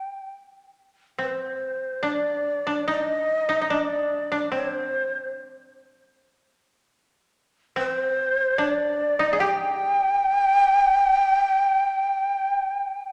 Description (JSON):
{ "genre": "japanese traditional, Japanese chamber music", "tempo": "74 BPM", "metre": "4/4", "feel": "uneven beats, rubato", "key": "unclear", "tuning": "A4 = 440 Hz", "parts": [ { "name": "breathy long shakuhachi", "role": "melody", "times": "0.0-13.1 s", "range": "C5 to G5", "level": "-24 LUFS", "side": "equal", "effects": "none" }, { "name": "koto", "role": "second line", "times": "0.0-13.1 s", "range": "C4 to Ab4", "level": "-30 LUFS", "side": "equal", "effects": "none" } ], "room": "moderate concert hall reverb, RT60 1.9 s", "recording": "none", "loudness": "-23 LUFS", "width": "mono", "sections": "0.0-1.2 A section; 1.2-13.1 B section", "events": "none", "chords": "none" }